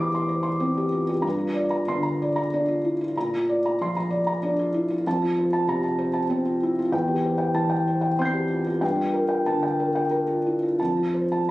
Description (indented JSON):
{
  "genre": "neoclassical minimalist piano",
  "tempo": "63 BPM (dotted quarters)",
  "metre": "6/8",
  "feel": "rubato",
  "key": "F major",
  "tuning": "A4 = 439 Hz",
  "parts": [
    { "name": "felt-muted upright piano", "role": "solo", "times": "0.0-11.5 s", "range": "E2 to C7", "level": "-22 LUFS", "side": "equal", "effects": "none" }
  ],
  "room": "light reverb",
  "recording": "recorded on a phone in the room, club reverb, compression",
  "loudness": "-22 LUFS",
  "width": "side -17 dB against mid",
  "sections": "0.0-11.5 A section",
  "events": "none",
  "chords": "0.0 C/E; 1.2 Gm7; 3.2 Bb; 5.1 F; 6.9 C/E; 8.8 Gm7; 10.8 F",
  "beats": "0.29 | 1.25 2.20 | 3.15 4.11 | 5.05 5.99 | 6.93 7.88 | 8.83 9.80 | 10.79"
}